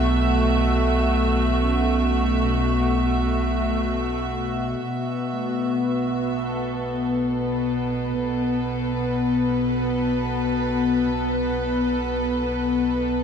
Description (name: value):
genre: ambient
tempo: free time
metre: none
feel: none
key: unclear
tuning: A4 = 441 Hz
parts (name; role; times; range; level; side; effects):
- warm studio string section; sustained chords; 0.0-13.2 s; B2 to E5; -21 LUFS; equal; none
- handpan; arpeggios; 0.0-12.4 s; A3 to D4; -38 LUFS; right 2 dB; none
- warm sub bass; bass; 0.0-13.2 s; B1; -27 LUFS; equal; none
room: wet concert hall reverb, RT60 2.4 s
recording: dark, warm production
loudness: -20 LUFS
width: side -7 dB against mid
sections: 0.0-4.8 A section; 4.8-13.2 B section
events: fade-in on sub bass 4.8-13.2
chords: 0.0 B7(no3); 4.8 B5